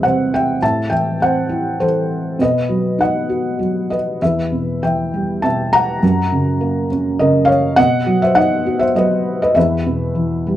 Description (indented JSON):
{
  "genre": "classical, lyrical solo piano",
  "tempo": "100 BPM",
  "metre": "3/4",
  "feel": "rubato",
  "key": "E harmonic minor",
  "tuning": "A4 = 440 Hz",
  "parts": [
    { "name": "felt-muted upright piano", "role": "solo", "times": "0.0-10.6 s", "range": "E2 to A#5", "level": "-14 LUFS", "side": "equal", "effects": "none" }
  ],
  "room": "light reverb",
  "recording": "dark, warm production",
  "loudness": "-14 LUFS",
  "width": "side -12 dB against mid",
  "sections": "0.0-10.6 A section",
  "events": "none",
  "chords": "0.0 C/E; 0.6 Am; 2.4 B; 4.2 Em; 6.0 F#; 7.8 B; 9.6 E5",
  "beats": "0.03 | 0.61 1.20 1.80 | 2.40 3.00 3.60 | 4.21 4.83 5.43 | 6.03 6.61 7.19 | 7.78 8.36 8.96 | 9.56 10.17"
}